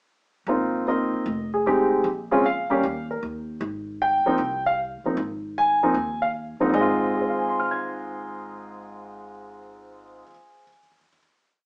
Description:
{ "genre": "jazz piano trio", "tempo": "154 BPM", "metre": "4/4", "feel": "swing 65% on 8ths", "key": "Ab major", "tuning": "A4 = 439 Hz", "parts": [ { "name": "warm grand piano", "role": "melody", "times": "0.5-11.2 s", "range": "Ab2 to Ab6", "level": "-22 LUFS", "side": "equal", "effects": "none" }, { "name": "upright bass", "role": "bass", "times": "0.5-10.2 s", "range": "F1 to Eb2", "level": "-34 LUFS", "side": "equal", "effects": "none" } ], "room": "wet studio reverb, RT60 0.6 s", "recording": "band playing live in one room, small speaker sound", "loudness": "-21 LUFS", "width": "side -37 dB against mid", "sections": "0.5-6.7 A section; 6.7-9.9 final chord", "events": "none", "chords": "0.5 Ab6; 1.3 Fm7; 2.0 Bbm; 2.8 Eb5; 3.6 Ab6" }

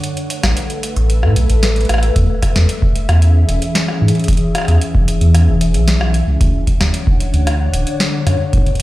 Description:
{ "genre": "IDM", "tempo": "113 BPM", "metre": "4/4", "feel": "straight", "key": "E mixolydian", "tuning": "A4 = 440 Hz", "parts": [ { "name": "glassy FM pad", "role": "sustained chords", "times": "0.0-8.8 s", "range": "D3 to F#5", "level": "-20 LUFS", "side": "left 2 dB", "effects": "ensemble chorus, built-in reverb, phaser" }, { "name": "booming analog drum machine", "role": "drums", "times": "0.0-8.8 s", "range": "hi-hat, rim click, snare drum", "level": "-21 LUFS", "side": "equal", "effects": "none" }, { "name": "warm sub bass", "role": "bass", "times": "0.4-8.4 s", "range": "D1 to A2", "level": "-12 LUFS", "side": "equal", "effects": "tube saturation" }, { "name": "electronic kick drum", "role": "drums", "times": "2.2-8.8 s", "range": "none", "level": "-15 LUFS", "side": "equal", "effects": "none" } ], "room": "light reverb", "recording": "played on a big sound system in a bare room, large studio reverb", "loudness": "-12 LUFS", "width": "side -17 dB against mid", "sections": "0.0-8.8 A section", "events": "break 0.0-2.2", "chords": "0.0 Asus2; 2.2 E6; 6.4 Dmaj7" }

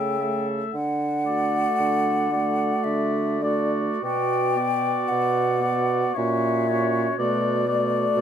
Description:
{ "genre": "classical, slow romantic movement for wind quintet", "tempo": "48-62 BPM", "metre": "3/4", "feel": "rubato", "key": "D major", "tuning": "A4 = 440 Hz", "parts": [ { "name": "mellow hollow concert flute", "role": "melody", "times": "0.0-8.2 s", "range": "D5 to G5", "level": "-25 LUFS", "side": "left 2 dB", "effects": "none" }, { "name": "warm oboe", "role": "second line", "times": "0.0-8.2 s", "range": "C#5 to E5", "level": "-28 LUFS", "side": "left 4 dB", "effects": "none" }, { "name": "warm French horn", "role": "accompaniment", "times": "0.0-8.2 s", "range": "A3 to C#4", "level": "-31 LUFS", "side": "right 1 dB", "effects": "none" }, { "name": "warm clarinet", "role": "accompaniment", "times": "0.0-8.2 s", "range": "F#4 to A4", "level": "-30 LUFS", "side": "right 12 dB", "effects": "none" }, { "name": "mellow bassoon", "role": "bass", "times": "0.0-8.2 s", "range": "A#2 to D3", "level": "-26 LUFS", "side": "right 2 dB", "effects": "none" } ], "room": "light reverb", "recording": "minimal, uncompressed stereo recording", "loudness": "-21 LUFS", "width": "side -8 dB against mid", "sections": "0.0-8.2 A section", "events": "none", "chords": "0.0 A7/C#; 0.7 D; 4.0 Bm; 6.2 F#7/A#; 7.2 Bm7" }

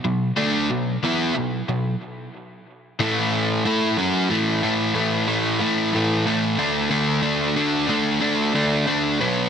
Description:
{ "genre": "rock", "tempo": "92 BPM", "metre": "4/4", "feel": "straight", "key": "unclear", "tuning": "A4 = 440 Hz", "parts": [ { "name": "crunchy overdriven guitar", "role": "solo", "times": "0.0-9.5 s", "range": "A2 to A4", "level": "-19 LUFS", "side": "equal", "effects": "tape echo" } ], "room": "light reverb, digital ambience", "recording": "dense, heavily limited modern master", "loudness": "-19 LUFS", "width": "side -7 dB against mid", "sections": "0.0-4.3 A section; 4.3-9.5 B section", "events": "none", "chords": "0.0 Bm; 3.0 A5; 3.6 F#m7; 4.3 A5; 6.6 D5" }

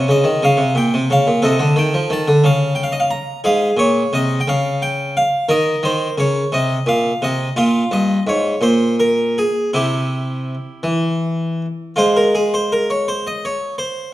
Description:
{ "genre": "classical, baroque-style suite movement for harpsichord", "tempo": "52-60 BPM (dotted quarters)", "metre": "6/8", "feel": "rubato", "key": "F minor", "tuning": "A4 = 441 Hz", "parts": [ { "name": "harpsichord", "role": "solo", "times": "0.0-14.1 s", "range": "G2 to Bb5", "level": "-15 LUFS", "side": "equal", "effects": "none" } ], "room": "wet recital hall reverb, RT60 1.6 s", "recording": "none", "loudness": "-15 LUFS", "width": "side -15 dB against mid", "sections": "0.0-12.0 A section; 12.0-14.1 A section", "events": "none", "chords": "0.0 Bbm; 1.4 Adim/C; 2.4 N.C.; 3.4 Ab69; 4.5 N.C.; 5.5 Eb5; 6.5 Bbsus24; 7.6 Gm7b5 (rootless); 9.7 C; 12.0 Fm/Ab" }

